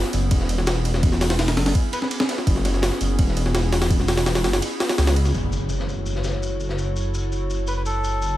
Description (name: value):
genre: drum and bass, jungle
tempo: 167 BPM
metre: 4/4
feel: straight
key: F# minor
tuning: A4 = 440 Hz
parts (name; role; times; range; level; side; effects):
- warbly tape-like pad; sustained chords; 0.0-8.4 s; B3 to C#5; -29 LUFS; left 1 dB; chorus, built-in reverb
- dark detuned saw bass; bass; 0.0-8.4 s; E1 to C#2; -22 LUFS; equal; tube saturation
- jungle sampler-style drum kit; drums; 0.0-5.3 s; hi-hat, kick drum, ride cymbal, snare drum; -22 LUFS; equal; overdrive, studio reverb
- snare drum and shaker; drums; 0.0-8.3 s; none; -34 LUFS; left 4 dB; high-pass filter on snare, studio reverb, high-pass filter on perc, high-pass filter on room
- melodica; melody; 1.9-2.1, 7.7-8.4 s; A4 to B4; -28 LUFS; equal; dub echo
- impact; sound effects; 5.3-6.8 s; none; -32 LUFS; equal; none
room: studio reverb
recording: none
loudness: -19 LUFS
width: side -14 dB against mid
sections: 0.0-5.3 A section; 5.3-8.4 B section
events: drop 0.0-5.3; kick drops out 4.6-5.3; impact 5.3-6.8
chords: 0.0 C#m7; 5.3 F#m7